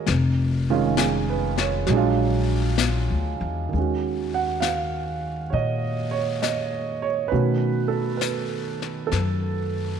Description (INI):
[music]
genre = jazz ballad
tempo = 67 BPM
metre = 4/4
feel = swing 68% on 8ths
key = Eb minor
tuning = A4 = 440 Hz
[part]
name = warm concert grand piano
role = accompaniment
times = 0.0-10.0 s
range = Eb3 to Gb5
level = -24 LUFS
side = right 8 dB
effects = none
[part]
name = upright bass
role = bass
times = 0.1-10.0 s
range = F1 to B2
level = -25 LUFS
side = left 3 dB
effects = none
[part]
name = vintage brush drum kit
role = drums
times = 0.1-10.0 s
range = brushed snare drum, hi-hat, snare drum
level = -30 LUFS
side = left 10 dB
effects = none
[sound]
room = light reverb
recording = 1960s-style stereo with parts hard left and right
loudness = -21 LUFS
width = side -7 dB against mid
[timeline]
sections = 0.0-3.7 A section; 3.7-10.0 B section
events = none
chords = 0.1 Db9/F; 1.9 Bb7b13; 3.7 Ebm9; 7.3 B9